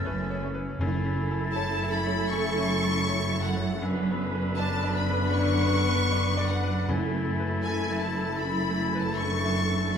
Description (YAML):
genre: cinematic, emotional film score for orchestra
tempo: 78 BPM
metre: 4/4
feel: rubato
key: unclear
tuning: A4 = 440 Hz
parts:
  - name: warm symphonic violin section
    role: melody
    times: 0.0-10.0 s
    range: E5 to C#6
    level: -33 LUFS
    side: left 2 dB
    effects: none
  - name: bright clarinet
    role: second line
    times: 0.0-9.7 s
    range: C#4 to E4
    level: -37 LUFS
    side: left 2 dB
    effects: none
  - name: small flute group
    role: second line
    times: 0.0-10.0 s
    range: B5 to A6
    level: -37 LUFS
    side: left 2 dB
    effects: none
  - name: warm symphonic violin section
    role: second line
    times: 0.0-10.0 s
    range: E5 to C#6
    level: -37 LUFS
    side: left 2 dB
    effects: none
  - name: bright concert grand piano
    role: accompaniment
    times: 0.0-10.0 s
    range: F#2 to E5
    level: -35 LUFS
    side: left 2 dB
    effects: none
  - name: dark symphonic viola section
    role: accompaniment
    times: 0.0-10.0 s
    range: D3 to B4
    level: -34 LUFS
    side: right 2 dB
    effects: none
  - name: mellow French horn section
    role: sustained chords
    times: 0.0-10.0 s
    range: A3 to E4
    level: -34 LUFS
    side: left 5 dB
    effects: none
  - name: rich symphonic double bass section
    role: bass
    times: 0.0-10.0 s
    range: F#1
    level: -31 LUFS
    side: right 1 dB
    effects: none
  - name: warm symphonic cello section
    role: bass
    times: 0.0-10.0 s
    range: F#2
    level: -32 LUFS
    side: right 3 dB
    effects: none
  - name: timpani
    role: percussion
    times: 0.8-1.9, 6.9-8.0 s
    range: F#2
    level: -32 LUFS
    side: equal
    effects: none
room: wet scoring stage reverb, RT60 1.7 s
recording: minimal, uncompressed stereo recording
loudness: -24 LUFS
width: side -7 dB against mid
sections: 0.0-10.0 A section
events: none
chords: 0.0 Aadd9/F#; 0.8 F#m7; 3.8 Bmadd9/F#; 6.9 Esus4/F#